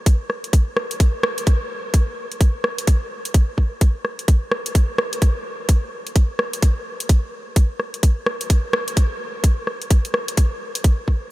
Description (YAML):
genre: UK garage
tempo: 128 BPM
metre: 4/4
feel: swing 62% on 16ths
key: none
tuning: none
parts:
  - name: electronic kick drum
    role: drums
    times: 0.1-11.2 s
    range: none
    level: -15 LUFS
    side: equal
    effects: none
  - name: garage drum kit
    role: drums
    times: 0.1-11.0 s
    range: hi-hat, rim click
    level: -25 LUFS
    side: equal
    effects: none
room: light reverb, digital ambience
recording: none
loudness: -18 LUFS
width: side -18 dB against mid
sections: 0.0-11.3 A section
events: none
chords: none